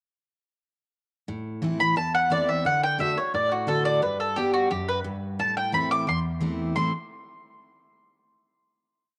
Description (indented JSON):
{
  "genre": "bluegrass",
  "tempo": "176 BPM",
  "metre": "4/4",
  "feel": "straight",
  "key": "A dorian",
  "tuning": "A4 = 440 Hz",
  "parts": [
    { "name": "picked steel-string acoustic guitar", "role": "accompaniment", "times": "1.3-6.9 s", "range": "E2 to G4", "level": "-30 LUFS", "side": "equal", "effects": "cassette tape" },
    { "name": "mandolin", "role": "melody", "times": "1.8-6.9 s", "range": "F#4 to D6", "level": "-26 LUFS", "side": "equal", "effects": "cassette tape" }
  ],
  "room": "moderate spring reverb, RT60 2.7 s",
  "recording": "home recording on cassette",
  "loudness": "-25 LUFS",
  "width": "mono",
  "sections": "1.3-6.8 A section; 6.8-8.1 final chord",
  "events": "none",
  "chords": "1.3 Am; 2.7 D; 4.0 G; 5.4 Am"
}